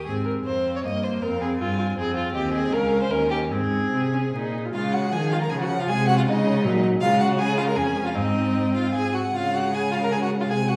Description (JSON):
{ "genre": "quick classical-period movement for string quartet", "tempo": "144-162 BPM", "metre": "3/4", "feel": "rubato", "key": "Ab major, Db major from 4.7 s", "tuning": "A4 = 440 Hz", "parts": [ { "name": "dark violin", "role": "melody", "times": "0.0-10.8 s", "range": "C5 to Bb5", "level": "-31 LUFS", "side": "equal", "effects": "none" }, { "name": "rich violin", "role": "second line", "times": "0.0-10.8 s", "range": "Eb4 to Eb5", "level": "-29 LUFS", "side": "equal", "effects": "none" }, { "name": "rich viola", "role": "accompaniment", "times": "0.1-10.8 s", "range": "F3 to F4", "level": "-28 LUFS", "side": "equal", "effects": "none" }, { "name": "rich cello", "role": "bass", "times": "0.1-10.8 s", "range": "Db2 to Eb3", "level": "-29 LUFS", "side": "equal", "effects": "none" } ], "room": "wet recital hall reverb, RT60 1.4 s", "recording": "heard from further back in the room, vinyl crackle", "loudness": "-23 LUFS", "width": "mono", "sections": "0.0-4.7 A section; 4.7-10.8 B section", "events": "none", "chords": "0.1 Ab; 1.2 Fm; 2.3 Cm/Eb; 2.7 Bbm/Db; 3.1 Eb7(no3); 3.5 Ab; 4.7 Db; 5.9 Ab7/C; 7.0 Db5; 7.8 Db/F; 8.1 Ab; 9.3 Db5", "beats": "| 0.06 0.45 0.83 | 1.22 1.60 1.97 | 2.35 2.72 3.11 | 3.51 3.93 4.33 | 4.74 5.13 5.51 | 5.89 6.27 6.64 | 7.01 7.38 7.76 | 8.15 8.55 8.94 | 9.34 9.73 10.12 | 10.50" }